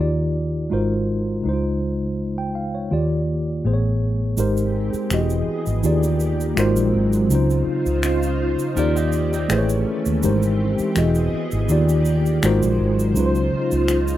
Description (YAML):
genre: R&B, neo-soul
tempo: 82 BPM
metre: 4/4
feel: swing 53% on 16ths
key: unclear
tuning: A4 = 440 Hz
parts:
  - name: mellow tine electric piano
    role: accompaniment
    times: 0.0-14.2 s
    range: A2 to G5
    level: -21 LUFS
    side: equal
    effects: medium stereo tremolo
  - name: vintage muted fingered electric bass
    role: bass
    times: 0.0-14.2 s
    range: E1 to Eb2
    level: -22 LUFS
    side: equal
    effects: none
  - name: soft string machine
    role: sustained chords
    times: 4.5-14.2 s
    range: Db3 to C5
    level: -24 LUFS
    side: equal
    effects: ensemble chorus
  - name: tube shaker and finger snaps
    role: percussion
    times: 4.4-14.2 s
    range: none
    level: -30 LUFS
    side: equal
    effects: none
  - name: electric guitar through a small old amp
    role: second line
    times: 8.8-9.7 s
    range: C4 to Bb4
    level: -31 LUFS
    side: right 4 dB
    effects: lush chorus
room: moderate studio reverb, RT60 0.6 s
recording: rough home demo mix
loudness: -18 LUFS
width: side -13 dB against mid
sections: 0.0-4.4 A section; 4.4-14.2 B section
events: none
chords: 0.0 Ebmaj7; 0.7 Ab13; 1.4 Dbmaj9; 2.9 Ebmaj7; 3.6 Amaj9; 4.4 Abmaj9; 5.1 Emaj7; 5.8 Ebmaj7; 6.6 Ab13; 7.3 Dbmaj9; 8.8 Ebmaj7; 9.5 Amaj9; 10.2 Abmaj9; 11.0 Emaj7; 11.7 Ebmaj7; 12.4 Ab13; 13.2 Dbmaj9